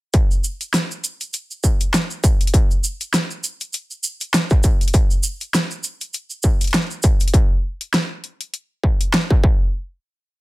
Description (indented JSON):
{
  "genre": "glitch hop",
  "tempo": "100 BPM",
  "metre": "4/4",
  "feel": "swing 56% on 16ths",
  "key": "none",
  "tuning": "none",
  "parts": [
    { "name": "dubstep drum kit", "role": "drums", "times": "0.1-9.4 s", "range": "hi-hat, rim click, snare drum", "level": "-20 LUFS", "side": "equal", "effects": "none" },
    { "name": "electronic kick drum", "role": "drums", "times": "0.1-9.6 s", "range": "none", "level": "-16 LUFS", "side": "equal", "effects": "distortion" },
    { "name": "cabasa", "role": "percussion", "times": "0.1-7.3 s", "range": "none", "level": "-27 LUFS", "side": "right 3 dB", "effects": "none" }
  ],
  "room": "little or no reverb",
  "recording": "none",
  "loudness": "-17 LUFS",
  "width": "side -20 dB against mid",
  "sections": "0.1-9.7 drop; 9.7-10.4 final hit",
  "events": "drop 0.1-9.7",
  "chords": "none",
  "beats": "| 0.14 0.74 1.34 1.94 | 2.54 3.14 3.74 4.34 | 4.94 5.54 6.14 6.74 | 7.34 7.94 8.54 9.14"
}